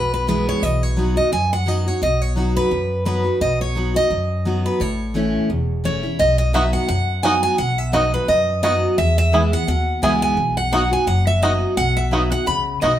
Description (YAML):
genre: bluegrass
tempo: 172 BPM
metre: 4/4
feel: swing 56% on 8ths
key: B mixolydian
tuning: A4 = 439 Hz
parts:
  - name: picked steel-string acoustic guitar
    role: melody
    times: 0.0-13.0 s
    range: B4 to B5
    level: -20 LUFS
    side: right 1 dB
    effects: none
  - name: picked steel-string acoustic guitar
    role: accompaniment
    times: 0.0-13.0 s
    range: E2 to F#4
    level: -23 LUFS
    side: equal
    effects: none
  - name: upright bass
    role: bass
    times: 0.0-13.0 s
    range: E1 to F#2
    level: -22 LUFS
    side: equal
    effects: none
  - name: bluegrass banjo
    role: arpeggios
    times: 6.5-12.9 s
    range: B3 to G#4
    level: -21 LUFS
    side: right 1 dB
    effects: none
room: moderate studio reverb, RT60 0.7 s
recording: band playing live in one room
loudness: -16 LUFS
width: side -11 dB against mid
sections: 0.0-13.0 A section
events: none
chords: 0.0 E; 0.6 B; 4.8 A; 6.2 B; 9.0 E; 10.4 B